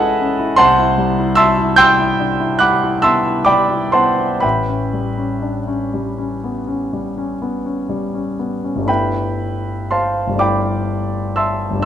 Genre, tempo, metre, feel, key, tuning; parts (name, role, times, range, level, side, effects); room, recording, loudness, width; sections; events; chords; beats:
classical, impressionist solo piano; 39-52 BPM (dotted quarters); 9/8; rubato; G major; A4 = 440 Hz
warm concert grand piano; solo; 0.0-11.9 s; G1 to G6; -14 LUFS; equal
moderate recital hall reverb, RT60 1.5 s; -14 LUFS; side -10 dB against mid
0.0-8.9 A section; 8.9-11.9 B section
0.0 Amaj7; 0.6 Cmaj7#11; 4.4 A9; 8.9 G69
| 0.59 1.77 3.03 | 4.43 5.93 7.42 | 8.88 10.41